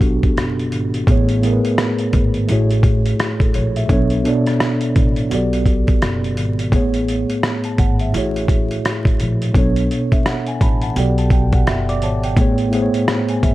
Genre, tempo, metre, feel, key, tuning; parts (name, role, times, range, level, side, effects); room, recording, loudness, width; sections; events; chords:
lo-fi hip hop; 85 BPM; 4/4; swing 61% on 16ths; A major; A4 = 439 Hz
mellow tine electric piano; accompaniment; 0.0-13.5 s; A2 to D6; -18 LUFS; equal; medium stereo tremolo, cassette tape, low-pass filter
upright bass; bass; 0.0-13.5 s; F#1 to B1; -20 LUFS; equal
dusty soul sampler-style drum kit; drums; 0.0-13.5 s; hi-hat, kick drum, rim click; -18 LUFS; equal
little or no reverb; dark, warm production, vinyl crackle; -15 LUFS; side -17 dB against mid
0.0-1.1 A section; 1.1-13.5 B section
tine electric piano fill 10.2-12.4
0.0 Gmaj9; 1.1 Amaj9; 2.5 A6; 3.9 Bm7; 5.3 Gmaj9; 6.7 Amaj9; 8.1 F#m9/A; 9.5 Bm7; 11.0 Gmaj9#11; 12.4 Amaj9